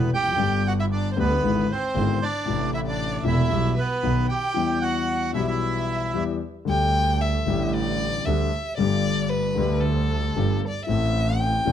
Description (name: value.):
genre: tango.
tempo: 115 BPM.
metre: 4/4.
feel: rubato.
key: E minor.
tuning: A4 = 442 Hz.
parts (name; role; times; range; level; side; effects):
bandoneon; melody; 0.0-6.2 s; B3 to G5; -26 LUFS; right 4 dB; none.
warm violin; second line; 0.0-11.7 s; A4 to G5; -28 LUFS; left 1 dB; none.
warm concert grand piano; accompaniment; 0.0-11.7 s; E1 to A4; -25 LUFS; left 5 dB; none.
clear double bass; bass; 0.0-11.7 s; E1 to D2; -26 LUFS; right 4 dB; none.
room: light reverb.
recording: close, detailed microphones.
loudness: -21 LUFS.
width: side -9 dB against mid.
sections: 0.0-6.7 A section; 6.7-11.7 B section.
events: violin solo 6.7-11.7.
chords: 0.4 G; 1.4 E7/G#; 2.5 Am; 3.5 Em/B; 4.0 B; 4.6 Em; 6.7 Dsus4; 8.8 Gsus2; 10.9 Am.